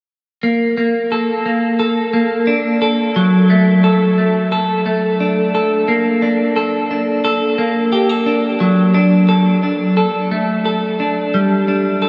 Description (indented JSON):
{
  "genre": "dream pop",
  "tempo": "88 BPM",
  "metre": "4/4",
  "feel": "straight",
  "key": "G minor",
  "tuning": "A4 = 437 Hz",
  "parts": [
    { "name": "clean electric guitar", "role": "solo", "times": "0.4-12.1 s", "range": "F#3 to A4", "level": "-15 LUFS", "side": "equal", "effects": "subtle chorus, analog delay" }
  ],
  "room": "wet huge ambient reverb, RT60 8.0 s",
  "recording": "dreamy mix soaked in reverb",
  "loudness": "-15 LUFS",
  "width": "mono",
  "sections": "0.4-5.9 A section; 5.9-12.1 B section",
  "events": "none",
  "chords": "0.4 Bbmaj7; 3.2 D; 5.9 Gmadd9 (rootless); 8.6 D; 11.3 Gsus2"
}